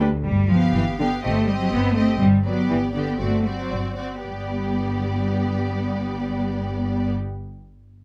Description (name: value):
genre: quick classical-period movement for string orchestra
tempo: 111-124 BPM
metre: 2/4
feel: rubato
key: G major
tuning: A4 = 440 Hz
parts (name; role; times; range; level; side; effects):
- rich studio violin section; second line; 0.0-7.1 s; F#4 to B4; -34 LUFS; equal; none
- warm studio viola section; accompaniment; 0.0-7.1 s; G3 to D4; -29 LUFS; equal; none
- rich studio cello section; bass; 0.0-7.1 s; D2 to B3; -26 LUFS; equal; none
- warm studio double bass section; bass; 0.0-7.1 s; G1 to D2; -28 LUFS; equal; none
- rich studio violin section; melody; 0.5-7.1 s; D5 to F5; -36 LUFS; equal; none
room: little or no reverb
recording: close, detailed microphones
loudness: -22 LUFS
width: mono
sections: 0.2-4.2 A section; 4.2-6.4 B section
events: slowing down 1.7-4.2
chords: 0.2 G7; 1.2 Cm/G; 2.2 G; 3.2 D7/G; 4.2 G